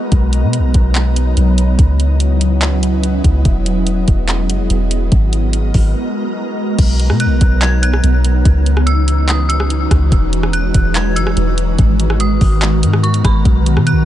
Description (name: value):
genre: hip hop, atmospheric cloud-rap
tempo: 144 BPM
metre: 4/4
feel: half-time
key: B major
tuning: A4 = 442 Hz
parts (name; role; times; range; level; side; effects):
- ethereal airy pad; sustained chords; 0.0-14.1 s; D#3 to A#5; -19 LUFS; equal; ensemble chorus, built-in reverb, sidechain pumping
- wind-like tuned noise texture; texture; 0.0-14.1 s; E3 to D#5; -29 LUFS; left 1 dB; built-in reverb
- soft 808-style bass; bass; 0.1-14.1 s; E1 to B2; -14 LUFS; equal; none
- smooth R&B drum kit; drums; 0.1-14.0 s; crash cymbal, handclaps, hi-hat, kick drum, rim click; -15 LUFS; equal; none
- dark detuned synth bell; melody; 7.2-14.1 s; B5 to G#6; -23 LUFS; equal; chorus, ping-pong delay
room: little or no reverb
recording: nothing above 10.4 kHz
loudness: -11 LUFS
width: side -12 dB against mid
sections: 0.0-6.8 A section; 6.8-14.1 B section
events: break 6.0-6.8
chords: 0.1 Bmaj7; 1.8 C#m11; 3.5 Emaj9; 5.1 G#m9; 6.8 Bmaj7; 8.5 C#m11; 10.1 Emaj9; 11.8 G#m9; 13.5 Bmaj7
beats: | 0.12 0.54 0.95 1.37 | 1.79 2.20 2.62 3.04 | 3.45 3.87 4.29 4.70 | 5.12 5.54 5.95 6.37 | 6.79 7.20 7.62 8.04 | 8.45 8.87 9.29 9.70 | 10.12 10.54 10.95 11.37 | 11.79 12.20 12.62 13.04 | 13.45 13.87